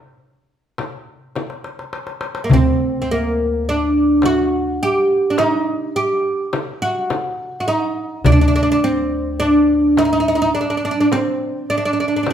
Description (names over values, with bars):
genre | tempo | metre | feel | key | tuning
Arabic maqam ensemble | 104 BPM (eighths) | 10/8 | straight | D maqam hijaz | A4 = 440 Hz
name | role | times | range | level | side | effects
darbuka | percussion | 0.8-12.3 s | none | -22 LUFS | equal | none
frame drum | percussion | 0.8-12.3 s | none | -24 LUFS | left 4 dB | none
oud | melody | 2.4-12.3 s | Bb3 to G4 | -16 LUFS | right 1 dB | none
upright bass | bass | 2.5-10.5 s | D2 | -22 LUFS | left 1 dB | none
room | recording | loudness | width
moderate large studio reverb, RT60 1.1 s | band playing live in one room | -15 LUFS | side -9 dB against mid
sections
0.0-2.5 A section; 2.5-12.3 B section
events
drum fill 1.4-2.5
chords
none